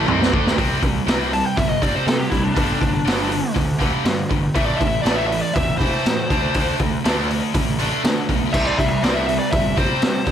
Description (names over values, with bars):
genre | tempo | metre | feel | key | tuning
hard rock | 121 BPM | 4/4 | straight | unclear | A4 = 440 Hz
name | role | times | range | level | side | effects
mellow tonewheel organ | sustained chords | 0.0-0.6, 8.5-10.3 s | C4 to C6 | -34 LUFS | equal | none
crunchy overdriven guitar | riff | 0.0-0.6 s | C3 to D4 | -25 LUFS | right 5 dB | harmonic tremolo
scooped high-gain guitar | riff | 0.0-10.3 s | G2 to D4 | -25 LUFS | left 12 dB | distortion
tight distorted guitar | riff | 0.0-10.3 s | G2 to D4 | -25 LUFS | right 12 dB | distortion
fuzz picked electric bass | bass | 0.0-10.3 s | E1 to D3 | -26 LUFS | equal | overdrive
raw garage drum kit | drums | 0.1-10.3 s | crash cymbal, hi-hat, kick drum, snare drum, toms | -21 LUFS | equal | none
biting lead guitar | melody | 1.3-10.3 s | D4 to A5 | -23 LUFS | left 1 dB | overdrive
room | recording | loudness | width
light reverb, studio ambience | none | -17 LUFS | side -9 dB against mid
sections
0.6-10.3 A section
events
drum fill 0.0-0.6; lead electric guitar solo 0.6-10.3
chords
0.0 Am; 0.6 C5; 2.6 G5; 4.6 Am; 6.3 D5; 8.5 C5